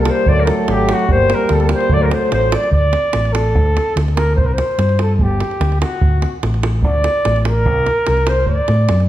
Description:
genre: balkan folk, Balkan brass band.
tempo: 146 BPM.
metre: 2/4.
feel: swing 53% on 16ths.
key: unclear.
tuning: A4 = 439 Hz.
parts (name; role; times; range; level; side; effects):
mellow flugelhorn; melody; 0.0-9.1 s; F#4 to D5; -18 LUFS; right 1 dB; none.
clear clarinet; second line; 0.0-2.7 s; F#4 to D5; -24 LUFS; left 5 dB; none.
warm euphonium; accompaniment; 0.0-2.6 s; F#3 to G3; -22 LUFS; right 4 dB; none.
warm trombone; accompaniment; 0.0-2.6 s; A3 to Bb3; -22 LUFS; left 5 dB; none.
fingered electric bass; bass; 0.0-9.1 s; G1 to A2; -16 LUFS; equal; none.
davul; percussion; 0.1-9.0 s; none; -21 LUFS; right 2 dB; none.
room: moderate recital hall reverb, RT60 1.5 s.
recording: none.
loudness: -13 LUFS.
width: side -13 dB against mid.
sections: 0.0-2.7 A section; 2.7-9.1 B section.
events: flugelhorn solo 2.7-9.1.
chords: 0.3 D; 1.1 Gm; 1.9 D; 2.7 D5; 4.4 C5; 5.2 G5; 6.0 D; 7.7 Bbsus2/C; 8.5 D.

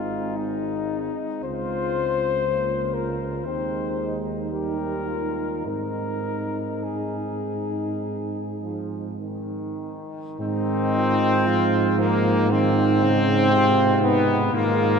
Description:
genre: classical, hymn-like piece for brass band.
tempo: 47-61 BPM.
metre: 4/4.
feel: rubato.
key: Ab major.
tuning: A4 = 441 Hz.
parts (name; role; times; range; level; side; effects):
warm flugelhorn; melody; 0.0-15.0 s; Eb4 to C5; -29 LUFS; left 7 dB; none.
warm French horn section; second line; 0.0-15.0 s; Bb3 to Ab4; -31 LUFS; right 8 dB; none.
bright trombone section; accompaniment; 0.0-15.0 s; Eb3 to G4; -25 LUFS; left 1 dB; none.
dark euphonium; accompaniment; 0.0-15.0 s; C3 to C4; -32 LUFS; right 6 dB; none.
warm tuba; bass; 0.0-15.0 s; Ab1 to Ab2; -27 LUFS; right 1 dB; none.
room: wet cathedral reverb, RT60 5.3 s.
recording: dark, warm production.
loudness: -21 LUFS.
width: side -6 dB against mid.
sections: 0.0-10.4 A section; 10.4-15.0 A section.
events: none.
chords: 0.0 Ab; 1.4 Bbm7/Db; 3.5 Ab/Eb; 4.5 Eb; 5.7 Ab.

